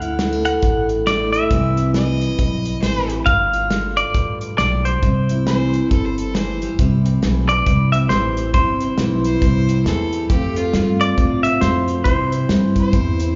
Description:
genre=honky-tonk and classic country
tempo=136 BPM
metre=4/4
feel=swing 61% on 8ths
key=C major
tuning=A4 = 440 Hz
part: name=clean electric guitar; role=melody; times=0.0-13.4 s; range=C5 to F#5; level=-23 LUFS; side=equal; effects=slapback echo
part: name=picked steel-string acoustic guitar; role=accompaniment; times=0.0-13.4 s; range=F2 to F4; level=-24 LUFS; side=equal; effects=none
part: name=upright bass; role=bass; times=0.0-13.4 s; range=G1 to C3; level=-23 LUFS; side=equal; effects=none
part: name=natural country drum kit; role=drums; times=0.0-13.3 s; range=hi-hat, kick drum, snare drum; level=-24 LUFS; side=equal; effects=none
part: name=clear fiddle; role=second line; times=2.0-13.4 s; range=F4 to Eb5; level=-30 LUFS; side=equal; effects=none
room=light reverb, small room ambience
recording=live gig heard through the venue's PA, club reverb, nothing above 7.5 kHz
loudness=-18 LUFS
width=mono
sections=0.0-6.8 A section; 6.8-13.4 B section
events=none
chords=0.0 Dadd9; 1.5 C; 3.3 G7; 5.0 C; 10.3 F; 12.1 C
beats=0.19 0.63 1.07 | 1.51 1.95 2.39 2.83 | 3.27 3.71 4.15 4.58 | 5.03 5.46 5.90 6.34 | 6.78 7.22 7.66 8.10 | 8.54 8.98 9.42 9.86 | 10.30 10.74 11.18 11.62 | 12.06 12.49 12.93

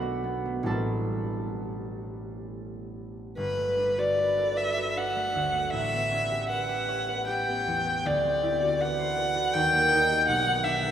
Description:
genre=classical, impressionist duo for violin and harp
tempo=65-82 BPM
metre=3/4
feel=rubato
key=G major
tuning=A4 = 441 Hz
part: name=concert harp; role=accompaniment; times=0.0-10.9 s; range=G1 to D6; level=-30 LUFS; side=right 1 dB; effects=none
part: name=rich violin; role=melody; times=3.4-10.9 s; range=B4 to G5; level=-24 LUFS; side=equal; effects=none
room=wet cathedral reverb, RT60 5.4 s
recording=in a vast, echoing space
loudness=-24 LUFS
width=side -9 dB against mid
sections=0.0-3.4 A section; 3.4-10.9 B section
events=none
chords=0.0 Bm7; 0.7 Am11; 3.4 Gmaj9; 5.7 A9; 8.1 D13; 9.5 Eb; 10.3 Bm7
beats=| 0.69 1.60 2.50 | 3.37 4.17 4.96 | 5.73 6.49 7.27 | 8.06 8.81 9.54 | 10.27

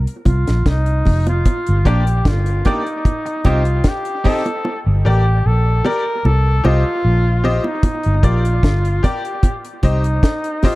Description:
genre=dub reggae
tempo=75 BPM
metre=4/4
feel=straight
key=G minor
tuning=A4 = 440 Hz
part: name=vintage muted fingered electric bass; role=bass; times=0.0-10.2 s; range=F1 to C2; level=-15 LUFS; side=equal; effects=none
part: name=deep reggae drum kit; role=drums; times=0.1-10.8 s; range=hi-hat, kick drum, snare drum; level=-16 LUFS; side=equal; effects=none
part: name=warm flugelhorn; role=melody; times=0.3-10.8 s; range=Eb4 to Bb4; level=-22 LUFS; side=equal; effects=dub echo
part: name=bongos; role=percussion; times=0.3-10.8 s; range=none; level=-25 LUFS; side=right 2 dB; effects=dub echo
part: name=electric guitar at the edge of break-up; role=accompaniment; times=1.9-4.5 s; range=Bb3 to G4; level=-26 LUFS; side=right 3 dB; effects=dub echo
part: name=bright upright piano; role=stabs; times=1.9-10.8 s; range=G4 to Eb5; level=-25 LUFS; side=left 3 dB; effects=dub echo
room=light reverb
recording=dark, warm production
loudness=-14 LUFS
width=side -19 dB against mid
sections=0.0-10.8 A section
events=break 0.0-1.5; part muted 4.6-7.8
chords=0.0 F7sus4; 1.5 Gm; 3.1 Cm; 4.6 Gm; 6.2 Cm; 7.8 Gm; 9.4 Cm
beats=0.66 | 1.46 2.25 3.05 3.85 | 4.65 5.44 6.24 7.04 | 7.84 8.63 9.43 10.23

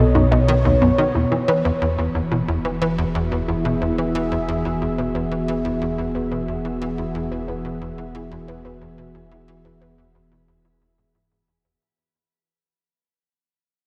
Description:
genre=ambient, sequencer-driven space music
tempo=90 BPM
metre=4/4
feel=straight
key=E major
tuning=A4 = 440 Hz
part: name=sweeping resonant pad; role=sustained chords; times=0.0-11.8 s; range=B2 to E5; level=-25 LUFS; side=equal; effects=lush chorus, shimmer reverb
part: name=warbly dusty pluck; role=arpeggios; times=0.0-11.8 s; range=B3 to G#5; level=-30 LUFS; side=equal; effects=chorus, tape echo, shimmer reverb
part: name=tight sequencer bass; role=riff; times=0.0-11.8 s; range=B1 to E3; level=-26 LUFS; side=equal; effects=subtle chorus, tape echo, shimmer reverb
part: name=warm sub bass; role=bass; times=0.0-11.8 s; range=E1 to B1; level=-30 LUFS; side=equal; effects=none
room=wet lush hall reverb, RT60 3.2 s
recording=none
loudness=-21 LUFS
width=mono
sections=0.0-1.1 A section; 1.1-11.8 B section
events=fade-out on analog synth bass 1.1-11.8; fade-out on synth arpeggio sound 1.1-11.8; fade-out 1.1-11.8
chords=0.0 B7; 1.1 Eadd9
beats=0.48 | 1.15 1.82 2.48 3.15 | 3.82 4.48 5.15 5.82 | 6.48 7.15 7.82 8.48 | 9.15 9.82 10.48 11.15

